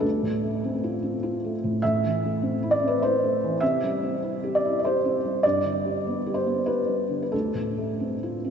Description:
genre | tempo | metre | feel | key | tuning
neoclassical minimalist piano | 89-103 BPM | 3/4 | rubato | unclear | A4 = 437 Hz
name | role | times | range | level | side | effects
felt-muted upright piano | solo | 0.0-8.5 s | D2 to E5 | -23 LUFS | equal | none
room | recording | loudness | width
wet cathedral reverb, RT60 5.4 s | in a vast, echoing space, nothing above 7.8 kHz | -23 LUFS | side -7 dB against mid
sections
0.0-8.5 A section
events
none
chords
0.0 Dm7; 1.8 Am; 3.6 C; 5.4 G; 7.3 Dm7

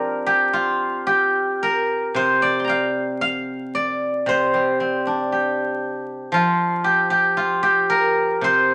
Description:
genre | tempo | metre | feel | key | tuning
chinese traditional, Chinese solo plucked strings | 57 BPM | 2/4 | rubato | G yu mode | A4 = 441 Hz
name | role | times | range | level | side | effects
steel-string zither | solo | 0.0-8.7 s | C3 to C6 | -20 LUFS | equal | none
room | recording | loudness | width
wet studio reverb, RT60 0.6 s | vinyl crackle | -20 LUFS | mono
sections
0.0-8.7 A section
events
none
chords
none

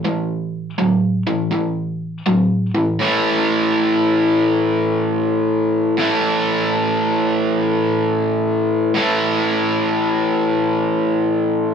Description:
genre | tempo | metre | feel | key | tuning
rock | 81 BPM | 4/4 | swing 65% on 8ths | unclear | A4 = 440 Hz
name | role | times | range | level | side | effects
raw garage guitar | solo | 0.0-11.7 s | A2 to A3 | -16 LUFS | equal | overdrive
room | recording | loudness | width
wet studio reverb, RT60 0.5 s | band playing live in one room | -16 LUFS | side -7 dB against mid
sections
0.0-3.0 A section; 3.0-11.7 B section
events
none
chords
0.0 A5

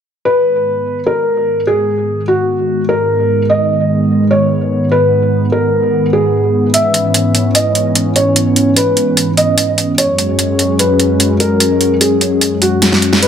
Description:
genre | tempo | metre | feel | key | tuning
heavy wobble dubstep | 148 BPM | 4/4 | half-time | G# minor | A4 = 438 Hz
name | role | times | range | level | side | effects
felt-muted upright piano | melody | 0.3-13.3 s | F#4 to E5 | -14 LUFS | equal | tape echo
lush unison pad | sustained chords | 0.3-13.3 s | F#2 to C#4 | -14 LUFS | equal | chorus, phaser
dubstep drum kit | drums | 6.7-13.3 s | hi-hat, snare drum | -13 LUFS | right 1 dB | none
room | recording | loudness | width
light reverb | none | -10 LUFS | side -8 dB against mid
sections
0.3-13.3 A section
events
filter sweep on analog synth pad 0.3-13.3; drum fill 12.8-13.2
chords
0.3 G#madd9; 6.7 C#m7/G#; 10.0 F#sus2

